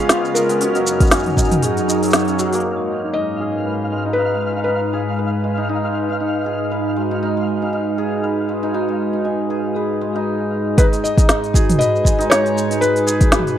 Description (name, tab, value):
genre	folktronica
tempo	118 BPM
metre	4/4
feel	swing 56% on 16ths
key	G# dorian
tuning	A4 = 440 Hz
part	felt-muted upright piano	melody	0.0-6.4, 10.8-13.6 s	A#4 to E#5	-21 LUFS	left 2 dB	tape echo
part	vibraphone with medium hard mallets	second line	0.0-2.7, 7.0-13.6 s	E#4 to G#5	-24 LUFS	equal	vintage 12-bit sampler grit, tape echo
part	warbly tape-like pad	sustained chords	0.0-13.6 s	F#2 to B4	-22 LUFS	right 1 dB	chorus, built-in reverb, phaser, vintage 12-bit sampler grit
part	hammered dulcimer	arpeggios	0.0-13.6 s	E#3 to C#5	-23 LUFS	equal	low-pass filter, tape echo
part	flickering grainy texture	texture	0.0-10.3 s	D#5 to E#6	-30 LUFS	left 1 dB	built-in reverb
part	organic electronic drum kit	drums	0.1-2.8, 10.8-13.6 s	hi-hat, shaker, snare drum, toms	-18 LUFS	equal	low-pass filter on hats, low-pass filter on perc, low-pass filter on snare, low-pass filter on toms
part	electronic kick drum	drums	1.0-1.5, 10.8-13.3 s	none	-14 LUFS	equal	none
room	digital ambience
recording	dry, close 1970s-style studio recording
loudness	-16 LUFS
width	side -10 dB against mid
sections	0.0-2.6 A section; 2.6-10.8 B section; 10.8-13.6 A section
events	band accent 2.1; filter sweep on hammered dulcimer 2.6-10.8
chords	0.0 C#7; 0.6 F#6; 2.6 G#m